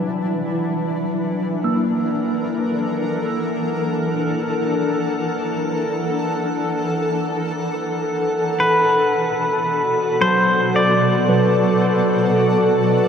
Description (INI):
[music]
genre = ambient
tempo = free time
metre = none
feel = none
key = unclear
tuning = A4 = 440 Hz
[part]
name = shimmering ambient pad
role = sustained chords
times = 0.0-13.1 s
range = B2 to D5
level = -20 LUFS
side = left 1 dB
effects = chorus, built-in reverb
[part]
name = tine electric piano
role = arpeggios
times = 0.0-13.1 s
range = F#3 to E6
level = -23 LUFS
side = right 1 dB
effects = medium stereo tremolo, diffuse ambient delay
[part]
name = drifting glass-harmonics texture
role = texture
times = 0.6-13.1 s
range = F#5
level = -32 LUFS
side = right 3 dB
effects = chorus, built-in reverb
[part]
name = pedal steel guitar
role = melody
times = 8.6-13.1 s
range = B4 to D5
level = -19 LUFS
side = left 1 dB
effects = diffuse ambient delay
[sound]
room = wet huge ambient reverb, RT60 8.0 s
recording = none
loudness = -17 LUFS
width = side -7 dB against mid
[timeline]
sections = 0.0-13.1 A section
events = fade-in on synth texture 0.0-13.1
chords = 0.0 F#7alt/E; 8.6 Bm7